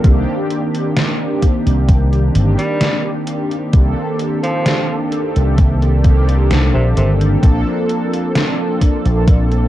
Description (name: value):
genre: vaporwave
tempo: 65 BPM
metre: 4/4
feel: straight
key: C dorian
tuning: A4 = 442 Hz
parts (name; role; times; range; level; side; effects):
- mellow tenor saxophone; melody; 0.0-7.1 s; C3 to G3; -25 LUFS; equal; tape echo
- mellow synth brass; accompaniment; 0.0-9.7 s; Eb3 to A4; -18 LUFS; equal; ensemble chorus, vintage 12-bit sampler grit, tape echo
- slap bass with an envelope filter; bass; 0.0-9.7 s; G1 to C2; -14 LUFS; equal; none
- electronic kick drum; drums; 0.0-9.5 s; none; -11 LUFS; equal; overdrive
- gated 80s digital drum machine; drums; 0.0-9.7 s; hi-hat, snare drum; -20 LUFS; equal; gated reverb, gated reverb snare, overdrive
room: little or no reverb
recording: dark, warm production, cassette tape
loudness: -13 LUFS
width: side -14 dB against mid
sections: 0.0-9.7 A section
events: none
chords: 0.0 Cm7; 7.4 Bbmaj9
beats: | 0.04 0.96 1.89 2.81 | 3.73 4.66 5.58 6.50 | 7.43 8.35 9.27